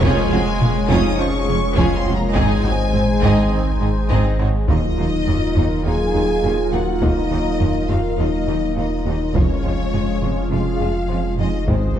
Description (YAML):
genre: cinematic, hybrid orchestral and electronic film score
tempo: 103 BPM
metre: 4/4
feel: straight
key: Eb dorian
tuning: A4 = 440 Hz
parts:
  - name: warm studio violin section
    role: melody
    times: 0.0-12.0 s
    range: C5 to Eb6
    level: -28 LUFS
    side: left 5 dB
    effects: none
  - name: rich symphonic violin section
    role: second line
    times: 0.0-12.0 s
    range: Ab3 to Eb5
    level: -30 LUFS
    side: left 2 dB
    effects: none
  - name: rich symphonic viola section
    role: accompaniment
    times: 0.0-12.0 s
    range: Eb3 to F4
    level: -29 LUFS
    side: right 2 dB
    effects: none
  - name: mellow French horn section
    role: sustained chords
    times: 0.0-12.0 s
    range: Ab3 to Ab4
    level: -25 LUFS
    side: left 2 dB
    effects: none
  - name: mellow trombone section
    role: sustained chords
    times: 0.0-12.0 s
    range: Eb3 to F4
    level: -28 LUFS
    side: right 4 dB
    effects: none
  - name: phased analog pad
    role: sustained chords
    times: 0.0-12.0 s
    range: Gb3 to Eb5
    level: -25 LUFS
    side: equal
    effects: phaser, chorus
  - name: punchy sub bass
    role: bass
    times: 0.0-12.0 s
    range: Eb1 to Ab1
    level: -24 LUFS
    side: equal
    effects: none
  - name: rich studio double bass section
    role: bass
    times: 0.0-12.0 s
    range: F1 to Eb2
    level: -25 LUFS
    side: right 4 dB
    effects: none
  - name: rich symphonic cello section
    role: bass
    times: 0.0-12.0 s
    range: Eb2 to Ab2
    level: -25 LUFS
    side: right 2 dB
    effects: none
  - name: taiko ensemble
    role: drums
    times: 0.0-12.0 s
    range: none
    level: -23 LUFS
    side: left 1 dB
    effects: none
  - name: dark baby grand piano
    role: texture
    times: 0.0-12.0 s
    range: Bb3 to C6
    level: -36 LUFS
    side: left 2 dB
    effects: none
room: wet scoring stage reverb, RT60 1.6 s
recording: dark, warm production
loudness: -16 LUFS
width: side -10 dB against mid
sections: 0.0-4.7 A section; 4.7-12.0 B section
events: none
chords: 0.0 Db/F; 2.4 Ab; 4.7 Ebmadd9; 9.3 Db/F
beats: | 0.02 0.60 1.19 1.77 | 2.35 2.94 3.52 4.10 | 4.68 5.26 5.85 6.43 | 7.01 7.59 8.18 8.76 | 9.34 9.93 10.51 11.09 | 11.67